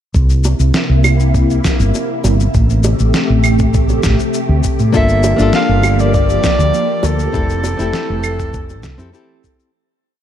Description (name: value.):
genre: sunset chillout.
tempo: 100 BPM.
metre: 4/4.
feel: straight.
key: unclear.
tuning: A4 = 440 Hz.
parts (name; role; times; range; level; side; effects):
soft string machine; sustained chords; 0.4-9.7 s; C3 to G4; -19 LUFS; equal; phaser, ensemble chorus, shimmer reverb.
woody fretless electric bass; bass; 0.1-9.1 s; F1 to A2; -14 LUFS; equal; wide subtle chorus.
electronic kick drum; drums; 0.1-9.6 s; none; -17 LUFS; equal; studio reverb.
electronic shaker, snare drum and claves; drums; 0.1-9.7 s; none; -21 LUFS; right 1 dB; studio reverb.
bongos; percussion; 0.5-8.8 s; none; -24 LUFS; right 2 dB; none.
flamenco guitar; accompaniment; 4.9-9.7 s; Bb3 to A4; -20 LUFS; moving between left 5 dB and right 1 dB; auto-pan, shimmer reverb.
breathy soprano saxophone; melody; 5.0-9.4 s; A4 to F5; -18 LUFS; left 1 dB; digital delay, shimmer reverb.
room: light reverb, studio ambience.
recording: dark, warm production.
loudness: -11 LUFS.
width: side -10 dB against mid.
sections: 0.1-9.7 groove.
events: fade-out 6.5-9.7.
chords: 0.1 C7; 2.5 Am7; 4.9 Gm7; 7.3 Fmaj7.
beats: | 0.14 0.74 1.34 1.94 | 2.54 3.14 3.74 4.34 | 4.94 5.54 6.14 6.74 | 7.34 7.94 8.54 9.14.